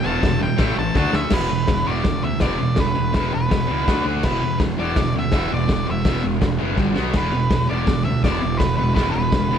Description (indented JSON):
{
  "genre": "garage rock duo or trio",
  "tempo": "165 BPM",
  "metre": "4/4",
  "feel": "straight",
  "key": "E minor",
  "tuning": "A4 = 443 Hz",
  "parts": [
    { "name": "octave-fuzz lead guitar", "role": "melody", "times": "0.0-9.6 s", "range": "B4 to A5", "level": "-25 LUFS", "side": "right 1 dB", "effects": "distortion, plate reverb" },
    { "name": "thick fuzz guitar", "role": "riff", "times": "0.0-9.6 s", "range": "E2 to D4", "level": "-22 LUFS", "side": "right 1 dB", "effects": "distortion" },
    { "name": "fuzz picked electric bass", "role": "bass", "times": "0.1-9.6 s", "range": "E1 to D2", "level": "-26 LUFS", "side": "left 1 dB", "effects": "overdrive, tube saturation" },
    { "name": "raw garage drum kit", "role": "drums", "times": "0.2-9.4 s", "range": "crash cymbal, hi-hat, kick drum, snare drum", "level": "-22 LUFS", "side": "equal", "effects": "none" }
  ],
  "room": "light reverb",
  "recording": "none",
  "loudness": "-18 LUFS",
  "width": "side -8 dB against mid",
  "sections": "0.0-1.3 A section; 1.3-9.6 B section",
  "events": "lead electric guitar solo 0.0-1.3; drum fill 1.0-1.3, 6.8-7.1",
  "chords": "0.0 Em; 0.6 A5; 1.0 D5; 1.3 E5; 3.9 D5; 4.2 E5; 6.8 G5; 7.0 B5; 7.1 E5",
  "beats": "0.24 0.60 0.97 | 1.33 1.69 2.06 2.42 | 2.78 3.15 3.51 3.87 | 4.24 4.60 4.96 5.33 | 5.69 6.05 6.42 6.78 | 7.14 7.51 7.87 8.23 | 8.60 8.96 9.32"
}